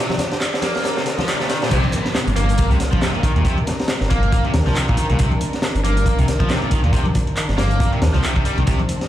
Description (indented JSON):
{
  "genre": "breakbeat, breaks",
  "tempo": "138 BPM",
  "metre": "4/4",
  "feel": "swing 57% on 16ths",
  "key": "C minor",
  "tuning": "A4 = 440 Hz",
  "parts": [
    { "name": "dark studio string section", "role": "sustained chords", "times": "0.0-9.1 s", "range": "Eb3 to D5", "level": "-28 LUFS", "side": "equal", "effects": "sidechain pumping" },
    { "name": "cranked stack guitar", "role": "riff", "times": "0.0-8.8 s", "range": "Bb2 to Bb3", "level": "-24 LUFS", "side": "equal", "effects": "overdrive, vintage 12-bit sampler grit, digital delay" },
    { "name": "riser and downlifter", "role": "sound effects", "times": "0.0-5.2 s", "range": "none", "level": "-29 LUFS", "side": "left 1 dB", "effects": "none" },
    { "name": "crunchy breakbeat drum kit", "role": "drums", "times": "0.1-9.1 s", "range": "crash cymbal, hi-hat, kick drum, snare drum", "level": "-21 LUFS", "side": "equal", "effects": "high-pass filter on kick, high-pass filter on hats, high-pass filter on cymbals, high-pass filter on snare, high-pass filter on room" },
    { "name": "punchy analog drum machine", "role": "drums", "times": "0.1-9.1 s", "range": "handclaps, hi-hat", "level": "-29 LUFS", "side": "equal", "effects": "none" },
    { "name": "congas", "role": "percussion", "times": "0.1-9.0 s", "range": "none", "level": "-26 LUFS", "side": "left 1 dB", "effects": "none" },
    { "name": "dark detuned saw bass", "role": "bass", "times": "1.7-8.8 s", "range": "G1 to Eb2", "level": "-18 LUFS", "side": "equal", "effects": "tube saturation" }
  ],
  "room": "light reverb, small room ambience",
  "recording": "played on a big sound system in a bare room, large studio reverb",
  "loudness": "-16 LUFS",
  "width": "side -13 dB against mid",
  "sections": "0.0-1.7 A section; 1.7-9.1 B section",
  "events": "build-up 0.0-1.7; drum fill 0.0-1.7; riser 0.0-1.7; drop 1.7-9.1",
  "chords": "0.0 Cm9",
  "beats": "0.41 0.84 1.28 | 1.71 2.15 2.58 3.02 | 3.45 3.89 4.32 4.76 | 5.19 5.63 6.06 6.50 | 6.93 7.37 7.80 8.24 | 8.67"
}